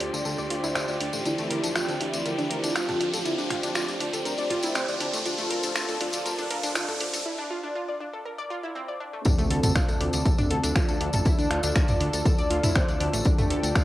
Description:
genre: melodic techno.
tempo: 120 BPM.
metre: 4/4.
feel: straight.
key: D minor.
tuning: A4 = 440 Hz.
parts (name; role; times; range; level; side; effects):
lush unison pad; sustained chords; 0.0-13.8 s; D3 to A4; -33 LUFS; equal; chorus, sidechain pumping.
analog pluck; arpeggios; 0.0-13.8 s; A3 to D6; -31 LUFS; equal; chorus, sidechain pumping, analog delay.
fat analog bass; bass; 0.0-13.8 s; A1 to D2; -33 LUFS; equal; sidechain pumping.
punchy analog drum machine; drums; 0.0-13.8 s; finger snaps, hi-hat, toms; -30 LUFS; equal; cassette tape.
riser and impact; sound effects; 0.0-11.3 s; none; -34 LUFS; equal; none.
dark studio string section; texture; 0.0-7.3 s; G4 to D5; -37 LUFS; left 1 dB; sidechain pumping.
tambourine; percussion; 0.1-13.8 s; none; -34 LUFS; left 3 dB; none.
fat analog lead; melody; 1.3-13.8 s; C4 to F4; -33 LUFS; equal; wide subtle chorus, sidechain pumping, cassette tape, analog delay.
electronic kick drum; drums; 9.3-13.8 s; none; -23 LUFS; equal; cassette tape.
room: wet spring reverb, RT60 1.6 s, digital ambience.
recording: home recording on cassette, high-pass filter.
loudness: -23 LUFS.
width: side -15 dB against mid.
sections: 0.0-9.3 A section; 9.3-13.8 B section.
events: build-up 0.0-9.3; riser 0.0-7.3; filter sweep on synth pluck 0.0-9.3; filter sweep on analog synth pad 0.0-9.3; break 7.3-9.3; drop 9.3-13.8; impact 9.3-11.3.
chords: 0.0 Dm; 1.3 Csus4; 9.3 Dm.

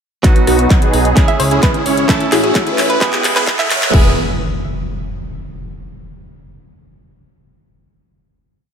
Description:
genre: EDM, festival progressive house.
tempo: 130 BPM.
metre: 4/4.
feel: straight.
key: E major.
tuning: A4 = 440 Hz.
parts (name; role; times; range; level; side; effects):
direct-recorded clean electric guitar; accompaniment; 0.2-4.1 s; A2 to A4; -20 LUFS; right 4 dB; spring reverb, sidechain pumping, ping-pong delay.
supersaw chords; riff; 0.2-4.1 s; B3 to C#5; -17 LUFS; right 1 dB; phaser, sidechain pumping, low-pass filter, ping-pong delay.
big-room dance drum kit; drums; 0.2-4.0 s; crash cymbal, handclaps, hi-hat, rim click; -20 LUFS; left 1 dB; none.
electronic kick drum; drums; 0.2-4.0 s; none; -12 LUFS; equal; none.
riser and impact; sound effects; 1.4-5.8 s; none; -24 LUFS; equal; none.
fat analog bass; bass; 0.5-4.2 s; E1 to E2; -19 LUFS; equal; sidechain pumping.
hollow square pluck; melody; 1.3-3.9 s; G#4 to E5; -20 LUFS; right 1 dB; chorus, ping-pong delay.
room: light reverb.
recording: high-pass filter.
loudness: -11 LUFS.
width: side -7 dB against mid.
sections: 0.2-3.9 build; 3.9-5.8 final chord.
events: build-up 0.2-3.9; drum fill 0.2-3.9; filter sweep on supersaw synth 0.2-3.9; filter sweep 0.2-3.9; riser 1.4-3.9.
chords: 0.2 B; 1.2 C#m; 2.1 A; 3.0 E.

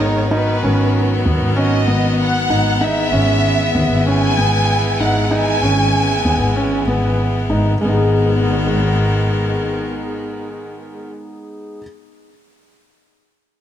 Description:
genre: piano and strings electronica.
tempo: 96 BPM.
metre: 4/4.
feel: straight.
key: G# minor.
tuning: A4 = 440 Hz.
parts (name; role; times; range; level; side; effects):
warm studio violin section; melody; 0.0-7.2 s; B4 to G#5; -20 LUFS; right 1 dB; none.
rich string quartet; sustained chords; 0.0-11.1 s; D#3 to B3; -22 LUFS; left 1 dB; none.
felt-muted upright piano; riff; 0.0-11.8 s; G#3 to G#4; -20 LUFS; equal; ping-pong delay.
warm studio double bass section; bass; 0.0-9.6 s; G#1 to D#2; -18 LUFS; equal; none.
room: moderate scoring stage reverb, RT60 1.8 s, studio ambience.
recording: none.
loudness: -14 LUFS.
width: side -10 dB against mid.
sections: 0.0-7.8 A section; 7.8-10.3 B section.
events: drop 0.0-7.8.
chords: 0.0 G#m; 2.8 E/G#; 7.8 G#m.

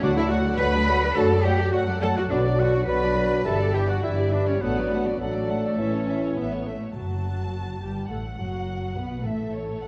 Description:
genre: quick classical-period movement for symphony orchestra.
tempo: 105 BPM.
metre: 4/4.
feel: straight.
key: D major.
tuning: A4 = 440 Hz.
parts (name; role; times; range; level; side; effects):
warm studio violin section; melody; 0.0-9.9 s; B4 to A5; -38 LUFS; equal; none.
bright oboe; second line; 0.0-6.6 s; A4 to B5; -36 LUFS; equal; none.
dark studio violin section; second line; 0.0-9.9 s; F#4 to B5; -38 LUFS; equal; none.
hollow concert flute; second line; 0.0-6.7 s; C#5 to D5; -34 LUFS; equal; none.
warm clarinet; second line; 0.0-6.6 s; A3 to B4; -36 LUFS; equal; none.
mellow bassoon; accompaniment; 0.0-6.7 s; E3 to G3; -33 LUFS; equal; none.
warm studio viola section; accompaniment; 0.0-9.9 s; D3 to B4; -33 LUFS; equal; none.
warm French horn section; sustained chords; 0.0-6.7 s; C#4 to G4; -33 LUFS; equal; none.
rich studio double bass section; bass; 0.0-9.9 s; F#1 to F#2; -30 LUFS; equal; none.
warm studio cello section; bass; 0.0-9.9 s; F#2 to B4; -31 LUFS; equal; none.
timpani; percussion; 0.0-0.8, 7.0-9.9 s; A2 to D3; -36 LUFS; equal; none.
room: wet scoring stage reverb, RT60 1.6 s.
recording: dark, warm production.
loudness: -24 LUFS.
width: mono.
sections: 0.0-7.0 A section; 7.0-9.9 B section.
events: none.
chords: 0.0 D; 1.2 D/F#; 2.3 Bm; 3.4 Em7/G; 4.6 D/A; 5.8 A; 7.0 F#madd11; 9.2 A5.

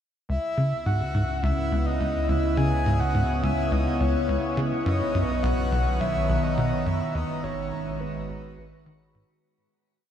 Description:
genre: ambient, sequencer-driven space music.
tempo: 105 BPM.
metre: 4/4.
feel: straight.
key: C# dorian.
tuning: A4 = 440 Hz.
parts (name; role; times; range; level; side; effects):
breathy flute-like synth lead; melody; 0.3-9.1 s; B4 to G#5; -29 LUFS; equal; wide subtle chorus, tape echo.
evolving wavetable pad; sustained chords; 1.0-9.4 s; B2 to A#5; -28 LUFS; equal; chorus, built-in reverb, phaser.
tight sequencer bass; riff; 0.3-9.2 s; G#1 to D#3; -27 LUFS; equal; lush chorus, tape echo.
round analog bass; bass; 0.3-9.4 s; G#1 to C#2; -30 LUFS; equal; none.
room: wet shimmer reverb, RT60 8.2 s.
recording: none.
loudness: -23 LUFS.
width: side -9 dB against mid.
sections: 0.3-9.4 A section.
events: fade-out 6.4-9.4.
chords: 0.3 C#m7; 4.9 Bmaj7; 7.1 G#m7.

